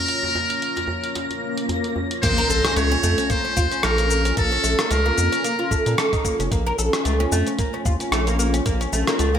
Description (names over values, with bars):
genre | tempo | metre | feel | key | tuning
organic downtempo | 112 BPM | 4/4 | swing 56% on 16ths | Bb harmonic minor | A4 = 440 Hz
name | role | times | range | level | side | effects
trumpet with metal mute | melody | 0.0-6.0 s | A4 to Db5 | -23 LUFS | left 1 dB | ping-pong delay
warm analog pad | sustained chords | 0.0-9.4 s | Bb3 to Db5 | -28 LUFS | left 1 dB | chorus, sidechain pumping
twinkling granular texture | texture | 0.0-2.2 s | Bb6 | -34 LUFS | left 2 dB | built-in reverb, ensemble chorus
dusty soul sampler-style drum kit | drums | 0.1-9.3 s | crash cymbal, hi-hat, rim click, shaker | -26 LUFS | left 1 dB | gated reverb
djembe | percussion | 0.2-2.1 s | none | -31 LUFS | right 2 dB | none
swell and impact | sound effects | 1.3-4.4 s | none | -30 LUFS | left 1 dB | none
oud | arpeggios | 2.2-9.4 s | A3 to Bb4 | -24 LUFS | right 1 dB | ping-pong delay
round analog bass | bass | 2.2-9.4 s | F1 to Bb2 | -22 LUFS | equal | sidechain pumping
electronic kick drum | drums | 2.2-8.8 s | none | -24 LUFS | equal | none
room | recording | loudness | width
light reverb, digital ambience | bright 1980s-style digital production | -18 LUFS | side -8 dB against mid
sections
0.0-2.2 A section; 2.2-9.4 B section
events
filter sweep on analog synth pad 0.0-2.2; swell 1.3-2.2; impact 2.2-4.4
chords
0.0 Bbm